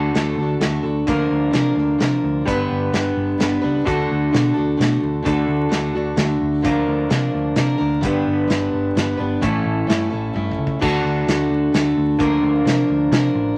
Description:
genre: folk rock and heartland rock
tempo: 130 BPM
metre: 3/4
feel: straight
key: D major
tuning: A4 = 440 Hz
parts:
  - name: picked plugged-in steel-string acoustic guitar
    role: accompaniment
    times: 0.0-13.6 s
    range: G2 to B4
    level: -27 LUFS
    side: equal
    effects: none
  - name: electric guitar through a small old amp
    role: riff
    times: 0.0-13.6 s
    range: A2 to B4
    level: -22 LUFS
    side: equal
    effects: none
  - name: hollow-body short-scale picked electric bass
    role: bass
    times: 0.0-13.5 s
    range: G1 to C3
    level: -26 LUFS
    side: equal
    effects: none
  - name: natural country drum kit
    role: drums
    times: 0.2-13.2 s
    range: crash cymbal, hi-hat, kick drum, snare drum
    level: -26 LUFS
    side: equal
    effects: none
room: moderate studio reverb, RT60 0.8 s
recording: vinyl crackle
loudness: -19 LUFS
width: mono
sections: 0.0-10.8 A section; 10.8-13.6 A section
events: drum fill 10.3-10.8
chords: 0.0 D; 1.1 Bb/D; 2.5 G; 3.9 D; 6.6 Bb/D; 8.0 G; 9.4 A; 10.8 D; 12.2 Bb/D

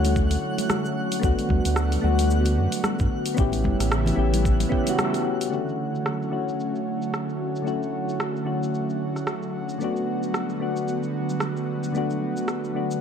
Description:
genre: sunset chillout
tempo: 112 BPM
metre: 4/4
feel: swing 57% on 16ths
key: D major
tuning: A4 = 440 Hz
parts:
  - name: soft electric-piano-like synth keys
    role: accompaniment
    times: 0.0-13.0 s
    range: D3 to G4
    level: -26 LUFS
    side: moving between left 6 dB and right 3 dB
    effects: chorus, auto-pan, digital delay
  - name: airy breathy pad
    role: sustained chords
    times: 0.0-13.0 s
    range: C#3 to F#4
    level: -29 LUFS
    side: right 2 dB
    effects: chorus
  - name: round analog bass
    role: bass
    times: 0.0-4.7 s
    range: G1 to G2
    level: -23 LUFS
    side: equal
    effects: none
  - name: deep house drum kit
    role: drums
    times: 0.0-13.0 s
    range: hi-hat, rim click, shaker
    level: -30 LUFS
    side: right 1 dB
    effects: low-pass filter on perc, studio reverb, low-pass filter on hats, low-pass filter on snare
  - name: twinkling granular texture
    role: texture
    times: 0.0-5.5 s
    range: F#5 to F#6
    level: -39 LUFS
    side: right 2 dB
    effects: built-in reverb
  - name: congas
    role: percussion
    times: 0.1-5.2 s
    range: none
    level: -32 LUFS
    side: left 6 dB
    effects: none
  - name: electronic kick drum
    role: drums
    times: 0.2-4.8 s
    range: none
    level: -25 LUFS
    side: equal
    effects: studio reverb
room: light reverb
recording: dark, warm production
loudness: -22 LUFS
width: side -8 dB against mid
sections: 0.0-5.5 A section; 5.5-13.0 B section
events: band accent 5.0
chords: 0.0 Dmaj7; 1.2 Gmaj7/D; 3.4 A7; 5.5 Dmaj7; 9.8 Gmaj7/D

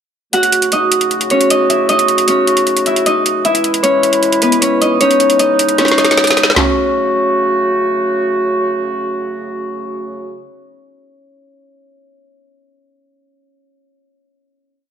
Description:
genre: hip hop, trap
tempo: 154 BPM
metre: 4/4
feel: half-time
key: F# dorian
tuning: A4 = 439 Hz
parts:
  - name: Celtic harp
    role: melody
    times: 0.3-9.5 s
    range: B3 to F#5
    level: -14 LUFS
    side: equal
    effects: low-pass filter, ping-pong delay
  - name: mellow woodwind section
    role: sustained chords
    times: 0.3-10.4 s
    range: B2 to F#4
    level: -17 LUFS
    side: right 1 dB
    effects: none
  - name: trap drum kit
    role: drums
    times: 0.3-6.7 s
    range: handclaps, hi-hat, snare drum, toms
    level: -15 LUFS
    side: right 1 dB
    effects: none
room: light reverb, small room ambience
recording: none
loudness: -11 LUFS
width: side -8 dB against mid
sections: 0.3-6.6 breakdown; 6.6-9.7 final chord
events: drum fill 5.8-6.6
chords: 0.3 F#m; 3.4 E; 5.0 C#madd9; 6.6 F#m

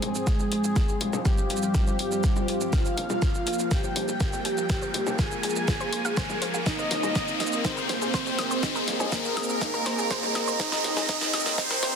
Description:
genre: melodic techno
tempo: 122 BPM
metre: 4/4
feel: straight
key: unclear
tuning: A4 = 439 Hz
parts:
  - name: fat analog lead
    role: melody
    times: 0.0-12.0 s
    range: G3 to Ab4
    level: -31 LUFS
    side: right 1 dB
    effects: wide subtle chorus, sidechain pumping, ping-pong delay
  - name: soft supersaw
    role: second line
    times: 0.0-12.0 s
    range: G4 to Ab5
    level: -33 LUFS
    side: left 1 dB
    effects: sidechain pumping, tape echo
  - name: lush unison pad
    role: sustained chords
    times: 0.0-12.0 s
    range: F3 to C4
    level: -35 LUFS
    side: right 1 dB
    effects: chorus, sidechain pumping
  - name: analog pluck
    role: arpeggios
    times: 0.0-11.9 s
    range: Eb4 to C6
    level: -36 LUFS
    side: equal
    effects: chorus, sidechain pumping, tape echo
  - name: tight sequencer bass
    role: bass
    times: 0.0-11.9 s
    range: F1 to F2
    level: -44 LUFS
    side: equal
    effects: none
  - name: deep house drum kit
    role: drums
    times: 0.0-11.9 s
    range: congas, hi-hat, shaker, snare drum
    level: -31 LUFS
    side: left 1 dB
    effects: sidechain pumping on perc, high-pass filter on perc, high-pass filter on snare, sidechain pumping on hats, high-pass filter on hats, high-pass filter on room
  - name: riser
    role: sound effects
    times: 1.5-12.0 s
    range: none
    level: -31 LUFS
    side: equal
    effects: none
  - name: deep dark ambient pad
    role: texture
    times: 0.7-12.0 s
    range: F4 to Bb5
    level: -35 LUFS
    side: left 1 dB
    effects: chorus, built-in reverb, sidechain pumping
  - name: electronic kick drum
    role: drums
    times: 0.3-11.7 s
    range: none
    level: -26 LUFS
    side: equal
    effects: none
room: moderate lush hall reverb, RT60 1.9 s, digital ambience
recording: dense, heavily limited modern master, high-pass filter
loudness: -23 LUFS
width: side -6 dB against mid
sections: 0.0-12.0 A section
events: build-up 0.0-12.0; drum fill 0.0-12.0; filter sweep on synth arpeggio sound 0.0-12.0; filter sweep 0.0-12.0; riser 1.5-12.0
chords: 0.0 Abadd9/F

